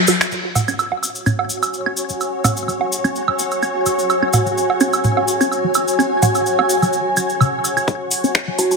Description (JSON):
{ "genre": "minimal techno", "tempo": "127 BPM", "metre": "4/4", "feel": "swing 54% on 16ths", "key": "unclear", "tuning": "A4 = 438 Hz", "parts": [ { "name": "resonant blip pluck", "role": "riff", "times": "0.1-8.5 s", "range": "C#3 to F#4", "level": "-22 LUFS", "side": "equal", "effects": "phaser, cassette tape, sidechain pumping, digital delay" }, { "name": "house drum kit", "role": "drums", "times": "0.1-0.4, 8.1-8.7 s", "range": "crash cymbal, finger snaps, hi-hat", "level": "-19 LUFS", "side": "equal", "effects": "high-pass filter on snare, low-pass filter on snare, high-pass filter on hats, low-pass filter on hats, high-pass filter on cymbals, low-pass filter on cymbals, high-pass filter on room, low-pass filter on room" }, { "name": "cabasa", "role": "percussion", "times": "0.1-8.8 s", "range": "none", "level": "-24 LUFS", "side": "left 3 dB", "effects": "none" }, { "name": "electronic woodblock and toms", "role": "percussion", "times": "0.1-7.9 s", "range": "none", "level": "-20 LUFS", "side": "right 4 dB", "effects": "ping-pong delay" }, { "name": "granular cloud pad", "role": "texture", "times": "1.5-8.8 s", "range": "F#4 to G#5", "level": "-19 LUFS", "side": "equal", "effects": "built-in reverb, sidechain pumping" }, { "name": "electronic kick drum", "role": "drums", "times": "7.9-8.5 s", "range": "none", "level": "-21 LUFS", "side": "left 1 dB", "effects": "high-pass filter on kick, high-pass filter on room" }, { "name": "kalimba", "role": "melody", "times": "8.6-8.8 s", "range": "F#4", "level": "-16 LUFS", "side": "right 2 dB", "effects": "low-pass filter" } ], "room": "wet lush hall reverb, RT60 1.8 s, digital ambience", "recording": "none", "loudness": "-16 LUFS", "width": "side -4 dB against mid", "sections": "0.3-7.9 A section", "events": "break 0.0-0.3", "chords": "0.3 F#5" }